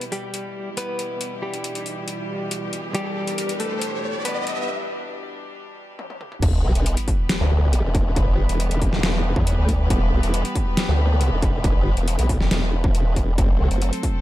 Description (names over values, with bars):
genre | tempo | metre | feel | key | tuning
heavy wobble dubstep | 138 BPM | 4/4 | half-time | E minor | A4 = 440 Hz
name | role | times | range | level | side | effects
direct-recorded clean electric guitar | melody | 0.0-4.7 s | G3 to B4 | -28 LUFS | left 1 dB | tremolo, digital delay
rich chamber string section | sustained chords | 0.0-14.2 s | B2 to C5 | -30 LUFS | equal | sidechain pumping, low-pass filter
dubstep drum kit | drums | 0.0-14.1 s | crash cymbal, hi-hat, snare drum, toms | -27 LUFS | left 1 dB | overdrive
riser and sub drop | sound effects | 1.4-8.2 s | none | -29 LUFS | equal | none
formant-sweep wobble bass | bass | 6.4-13.9 s | E1 to E2 | -20 LUFS | equal | chorus, overdrive
electronic kick drum | drums | 6.4-14.1 s | none | -22 LUFS | equal | distortion
room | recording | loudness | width
little or no reverb | dark, warm production, high-pass filter | -20 LUFS | side -15 dB against mid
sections
0.0-6.4 A section; 6.4-14.2 B section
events
build-up 0.0-6.4; riser 1.4-4.7; break 4.7-6.4; drum fill 6.0-6.4; drop 6.4-14.2; impact 6.4-8.2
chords
0.0 Em; 13.4 F#dim